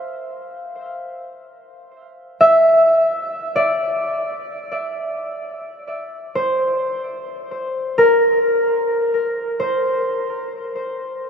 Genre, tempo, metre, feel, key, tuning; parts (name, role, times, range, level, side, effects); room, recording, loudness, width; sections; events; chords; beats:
ambient; free time; A4 = 440 Hz
concert harp; solo; 0.0-11.3 s; Bb4 to F5; -17 LUFS; equal; ping-pong delay
wet huge ambient reverb, RT60 7.8 s; -16 LUFS; side -6 dB against mid
0.0-9.4 A section; 9.4-11.3 B section
free time